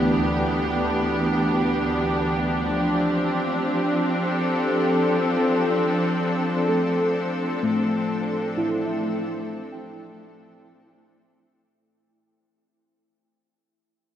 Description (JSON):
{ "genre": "ambient", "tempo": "free time", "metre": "none", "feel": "none", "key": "D dorian", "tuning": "A4 = 440 Hz", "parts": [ { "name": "clear symphonic string section", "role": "sustained chords", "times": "0.0-11.7 s", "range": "D2 to A4", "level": "-21 LUFS", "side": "equal", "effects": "none" }, { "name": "muted felt-like synth keys", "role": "arpeggios", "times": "0.0-13.2 s", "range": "A3 to G5", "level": "-29 LUFS", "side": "equal", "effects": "chorus, diffuse ambient delay" } ], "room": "wet huge ambient reverb, RT60 9.0 s", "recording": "dark, warm production", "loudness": "-20 LUFS", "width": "side -10 dB against mid", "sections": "0.0-11.7 A section", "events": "fade-out 5.6-11.7", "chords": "0.0 Em7/D; 2.7 Dm7" }